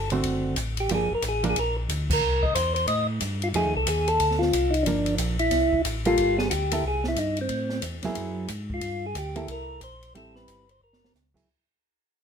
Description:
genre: soul jazz organ trio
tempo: 182 BPM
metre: 4/4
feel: swing 62% on 8ths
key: unclear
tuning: A4 = 440 Hz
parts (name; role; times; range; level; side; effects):
- percussive tonewheel organ; melody; 0.0-11.1 s; C4 to Eb5; -25 LUFS; left 1 dB; slow rotary speaker
- mellow tonewheel organ; bass; 0.0-11.5 s; F#1 to A2; -30 LUFS; equal; overdrive, chorus vibrato, slow rotary speaker
- hollow-body jazz guitar; accompaniment; 0.1-11.5 s; D3 to A4; -28 LUFS; right 4 dB; none
- open jazz drum kit; drums; 0.1-11.4 s; crash cymbal, hi-hat, kick drum, ride cymbal, snare drum; -31 LUFS; equal; none
room: moderate studio reverb, RT60 0.7 s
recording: minimal, uncompressed stereo recording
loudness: -23 LUFS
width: side -7 dB against mid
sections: 0.0-6.2 A section; 6.2-11.5 B section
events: band accent 2.1; fade-out 6.2-11.5; drum fill 10.8-11.1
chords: 0.2 D7; 0.9 Gm7; 2.2 C; 3.5 F7#9; 4.9 Gm7; 5.5 C7; 6.2 Gm9; 6.8 C5; 7.5 Am; 8.2 Gb9; 8.8 Gmadd9; 9.5 C6; 10.1 Am7; 10.8 Gb9

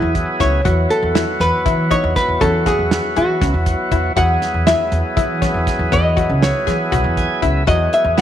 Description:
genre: progressive instrumental, band music in an uneven meter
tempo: 239 BPM (eighths)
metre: 7/8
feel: straight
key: E major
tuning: A4 = 440 Hz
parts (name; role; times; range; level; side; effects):
- archtop guitar, miked and amplified; melody; 0.0-8.2 s; E4 to F#5; -18 LUFS; equal; none
- tonewheel organ; accompaniment; 0.0-8.2 s; E3 to G#5; -21 LUFS; equal; overdrive, slow rotary speaker
- analog pluck; arpeggios; 0.0-8.2 s; B3 to G#4; -24 LUFS; left 10 dB; chorus
- upright bass; bass; 0.0-8.2 s; B1 to E3; -19 LUFS; equal; none
- cloth-damped thuddy drum kit; drums; 0.1-8.2 s; hi-hat, kick drum, snare drum; -21 LUFS; right 2 dB; none
room: light reverb, small room ambience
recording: 1960s-style stereo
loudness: -14 LUFS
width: side -10 dB against mid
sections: 0.0-8.2 A section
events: hollow-body jazz guitar solo 0.0-8.2; tonewheel organ fill 6.9-7.7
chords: 0.0 Eadd9; 0.7 F#m7/E; 4.2 Eadd9; 7.7 F#5/E

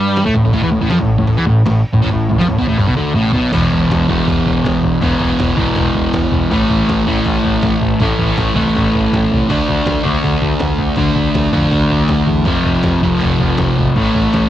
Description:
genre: heavy metal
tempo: 161 BPM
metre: 4/4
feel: straight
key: A minor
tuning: A4 = 441 Hz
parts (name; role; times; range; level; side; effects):
- sludgy distorted guitar; riff; 0.0-14.5 s; E2 to D4; -13 LUFS; equal; overdrive, cassette tape
- growling picked electric bass; bass; 0.0-14.4 s; E1 to A2; -20 LUFS; equal; overdrive
- lo-fi sampler-style drum kit; drums; 0.2-14.4 s; crash cymbal, kick drum, snare drum, toms; -21 LUFS; equal; cassette tape
room: little or no reverb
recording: home recording on cassette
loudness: -12 LUFS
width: side -12 dB against mid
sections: 0.0-3.5 A section; 3.5-14.5 B section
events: drum fill 3.1-3.5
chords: 0.0 A5; 3.5 E5; 6.5 A5; 9.5 D5; 12.5 F5; 14.0 A5

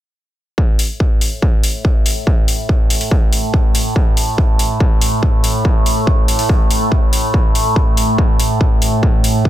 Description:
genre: driving peak-time techno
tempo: 142 BPM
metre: 4/4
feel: straight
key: unclear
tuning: A4 = 438 Hz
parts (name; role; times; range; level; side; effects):
- overtone-sweeping drone; drone; 1.3-9.5 s; A2 to A3; -19 LUFS; right 1 dB; chorus, built-in reverb, sidechain pumping
- electronic kick drum; drums; 0.6-9.5 s; none; -14 LUFS; equal; distortion
- electronic hi-hat; drums; 0.8-9.3 s; none; -20 LUFS; left 2 dB; none
room: digital ambience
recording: none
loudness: -12 LUFS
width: side -13 dB against mid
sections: 0.6-9.5 A section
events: none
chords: none

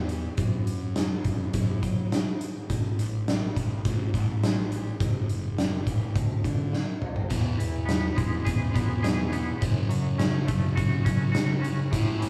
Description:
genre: quiet-loud alternative rock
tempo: 104 BPM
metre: 4/4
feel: straight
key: unclear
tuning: A4 = 436 Hz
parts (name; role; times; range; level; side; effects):
- fuzz fingered electric bass; bass; 0.0-12.3 s; F#1 to F#3; -33 LUFS; equal; overdrive
- oversized low-tuned drum kit; drums; 0.1-12.3 s; hi-hat, kick drum, snare drum, toms; -29 LUFS; equal; none
- twangy electric guitar; arpeggios; 7.3-12.3 s; E2 to G#4; -37 LUFS; equal; tremolo
- thick fuzz guitar; riff; 7.3-12.3 s; E2 to A3; -32 LUFS; equal; distortion
room: light reverb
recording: band playing live in one room, small room ambience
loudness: -27 LUFS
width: mono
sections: 0.0-12.3 A section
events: drum fill 6.7-7.3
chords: 0.0 N.C.; 5.0 F#m; 6.2 N.C.; 7.3 E; 9.6 F#m

